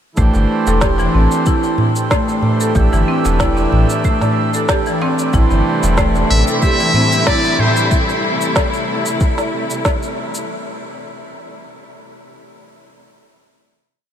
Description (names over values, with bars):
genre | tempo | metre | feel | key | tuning
organic downtempo | 93 BPM | 4/4 | swing 54% on 16ths | A minor | A4 = 440 Hz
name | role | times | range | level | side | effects
hand-pumped harmonium | accompaniment | 0.2-7.9 s | E3 to E5 | -21 LUFS | right 2 dB | sidechain pumping, analog delay
marimba with hard mallets | arpeggios | 0.2-7.9 s | E3 to A4 | -20 LUFS | equal | analog delay
warm sub bass | bass | 0.2-6.4 s | E1 to A1 | -15 LUFS | equal | sidechain pumping
electronic cabasa and snare drum | drums | 0.2-10.5 s | none | -24 LUFS | equal | none
electronic kick drum | drums | 0.2-10.0 s | none | -18 LUFS | equal | none
darbuka | percussion | 0.2-7.7 s | none | -23 LUFS | right 1 dB | none
warm studio string section | sustained chords | 5.3-10.5 s | C3 to E4 | -22 LUFS | left 2 dB | vintage 12-bit sampler grit, sidechain pumping
trumpet with metal mute | melody | 6.3-7.9 s | C5 to E5 | -20 LUFS | equal | analog delay
room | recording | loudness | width
moderate huge ambient reverb, RT60 7.2 s | dreamy mix soaked in reverb | -13 LUFS | side -9 dB against mid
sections
0.2-10.5 groove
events
none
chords
0.2 Am7